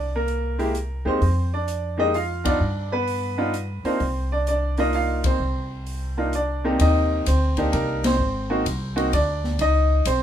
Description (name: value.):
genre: jazz piano trio.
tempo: 129 BPM.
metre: 3/4.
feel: swing 66% on 8ths.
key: C minor.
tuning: A4 = 440 Hz.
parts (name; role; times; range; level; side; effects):
bright upright piano; melody; 0.0-10.2 s; C3 to F5; -23 LUFS; equal; none.
upright bass; bass; 0.0-10.2 s; Ab1 to G2; -24 LUFS; equal; none.
open jazz drum kit; drums; 0.3-10.2 s; hi-hat, kick drum, ride cymbal, snare drum; -30 LUFS; left 2 dB; none.
room: light reverb.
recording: minimal, uncompressed stereo recording.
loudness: -20 LUFS.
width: side -10 dB against mid.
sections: 0.0-6.8 A section; 6.8-10.2 B section.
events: band accent 2.4, 5.2, 8.0.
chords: 0.0 C7b13; 1.2 F7(no3); 2.6 G(b13); 4.0 Cm11; 6.8 Cm7; 8.2 Ab7; 9.6 Dbmaj7sus2.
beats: 0.28 0.74 | 1.21 1.68 2.14 | 2.61 3.07 3.54 | 4.00 4.47 4.93 | 5.40 5.87 6.33 | 6.80 7.26 7.73 | 8.19 8.66 9.12 | 9.59 10.05.